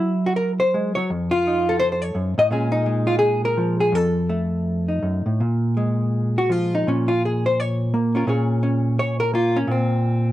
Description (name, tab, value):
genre	solo jazz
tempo	168 BPM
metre	4/4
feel	swing 64% on 8ths, rubato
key	Bb minor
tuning	A4 = 439 Hz
part	hollow-body jazz guitar	solo	0.0-10.3 s	F2 to Eb5	-18 LUFS	equal	none
room	digital ambience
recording	dry, close 1970s-style studio recording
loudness	-18 LUFS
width	side -14 dB against mid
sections	0.0-5.4 A section; 5.4-10.3 B section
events	hollow-body jazz guitar solo 5.4-10.3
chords	0.0 Gb7#11; 1.1 F7; 2.5 Bbm7; 3.9 F7; 5.4 Bbm7